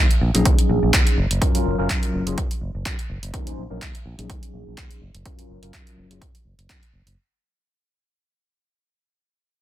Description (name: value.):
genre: filtered disco house.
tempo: 125 BPM.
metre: 4/4.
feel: swing 55% on 16ths.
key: unclear.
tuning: A4 = 439 Hz.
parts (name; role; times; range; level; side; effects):
modern bright fingered electric bass; bass; 0.0-7.1 s; Gb1 to Gb2; -25 LUFS; equal; sidechain pumping, low-pass filter.
punchy analog drum machine; drums; 0.1-7.2 s; handclaps, hi-hat; -24 LUFS; right 1 dB; sidechain pumping on hats.
bell-like tine electric piano; accompaniment; 0.3-6.2 s; Gb3 to C5; -25 LUFS; left 1 dB; phaser, sidechain pumping, low-pass filter.
electronic kick drum; drums; 0.5-6.8 s; none; -21 LUFS; equal; none.
room: digital ambience.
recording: dense, heavily limited modern master.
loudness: -18 LUFS.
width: side -13 dB against mid.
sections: 0.0-7.2 A section.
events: fade-out 0.0-7.2; filter sweep 0.0-7.2.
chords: 0.0 Ebm7; 1.2 Gbmaj7; 3.3 Ebm7; 5.0 Gbmaj7.